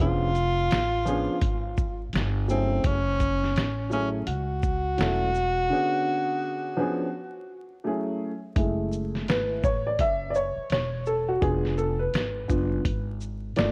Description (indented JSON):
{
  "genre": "hip hop, jazz-hop",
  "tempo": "84 BPM",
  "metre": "4/4",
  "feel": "swing 60% on 16ths",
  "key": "F# minor",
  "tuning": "A4 = 440 Hz",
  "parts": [
    { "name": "breathy tenor saxophone", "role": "melody", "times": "0.0-7.8 s", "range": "B#3 to F#4", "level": "-30 LUFS", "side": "equal", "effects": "none" },
    { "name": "dark upright piano", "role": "accompaniment", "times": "0.0-13.7 s", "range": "C#3 to E5", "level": "-30 LUFS", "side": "equal", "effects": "none" },
    { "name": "upright bass", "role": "bass", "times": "0.0-13.7 s", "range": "E1 to C#2", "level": "-32 LUFS", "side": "equal", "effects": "none" },
    { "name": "lo-fi sampler-style drum kit", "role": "drums", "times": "0.3-13.7 s", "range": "hi-hat, kick drum, shaker, snare drum", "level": "-30 LUFS", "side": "equal", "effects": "none" }
  ],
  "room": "light reverb, small room ambience",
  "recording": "worn, warbling old tape, cassette tape, vinyl crackle, warbly pitch drift",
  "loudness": "-26 LUFS",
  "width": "mono",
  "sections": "0.0-8.6 A section; 8.6-13.7 B section",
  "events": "break 5.7-8.6; upright piano solo 8.6-13.7",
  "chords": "0.0 C#7b9/E#; 2.1 A7#9/G; 2.9 F#m7; 5.7 C#7b9; 7.9 F#m7; 11.4 Fdim7"
}